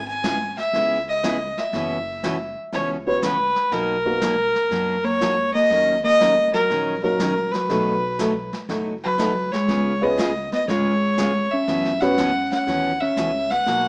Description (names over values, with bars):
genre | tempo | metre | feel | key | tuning
country, western swing | 121 BPM | 4/4 | swing 68% on 8ths | B major | A4 = 440 Hz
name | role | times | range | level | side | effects
clear fiddle | melody | 0.0-13.9 s | A#4 to G#5 | -24 LUFS | equal | plate reverb
upright bass | bass | 0.0-13.9 s | F#1 to F#2 | -39 LUFS | equal | none
picked steel-string acoustic guitar | accompaniment | 0.2-13.9 s | B2 to A#4 | -29 LUFS | equal | none
jazz brush drum kit | drums | 0.2-13.9 s | brushed snare drum, hi-hat, kick drum, snare drum | -34 LUFS | equal | none
dark upright piano | accompaniment | 3.1-12.2 s | A#3 to B4 | -26 LUFS | equal | none
hollow-body jazz guitar | second line | 5.0-13.9 s | F#3 to C#4 | -28 LUFS | equal | none
room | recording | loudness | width
wet studio reverb, RT60 0.8 s | small speaker sound | -21 LUFS | mono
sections
0.0-13.9 A section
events
none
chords
0.0 C#m7/G#; 1.7 F#7sus4; 3.7 Bmaj7; 5.7 D#m7; 7.7 B7; 9.7 C#7; 11.7 F#7sus4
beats
0.24 0.73 1.23 | 1.73 2.23 2.73 3.23 | 3.72 4.22 4.72 5.22 | 5.71 6.21 6.71 7.21 | 7.70 8.20 8.70 9.19 | 9.69 10.19 10.68 11.18 | 11.68 12.17 12.67 13.17 | 13.66